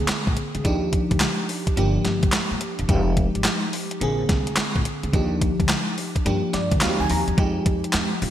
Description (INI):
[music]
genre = R&B, new jack swing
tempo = 107 BPM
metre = 4/4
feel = swing 64% on 16ths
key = F dorian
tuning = A4 = 439 Hz
[part]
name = FM electric piano with soft pad layer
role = accompaniment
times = 0.0-8.3 s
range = D3 to Bb5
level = -24 LUFS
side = equal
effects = chorus
[part]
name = upright bass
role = bass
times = 0.0-8.3 s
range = E1 to F3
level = -26 LUFS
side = equal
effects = none
[part]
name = crisp 8-bit digital drum machine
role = drums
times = 0.1-8.3 s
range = handclaps, hi-hat, kick drum, snare drum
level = -23 LUFS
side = equal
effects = overdrive, gated reverb
[sound]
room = moderate lush hall reverb, RT60 2.1 s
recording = bright 1980s-style digital production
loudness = -20 LUFS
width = side -11 dB against mid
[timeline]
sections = 0.0-7.4 A section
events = FM electric piano fill 6.3-7.4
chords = 0.0 Bb9; 0.6 Ebmaj9; 1.8 Gm7; 2.9 Fm9; 4.0 Bb9; 5.1 Ebmaj9; 6.3 Gm7; 6.8 Eb69; 7.4 Fm9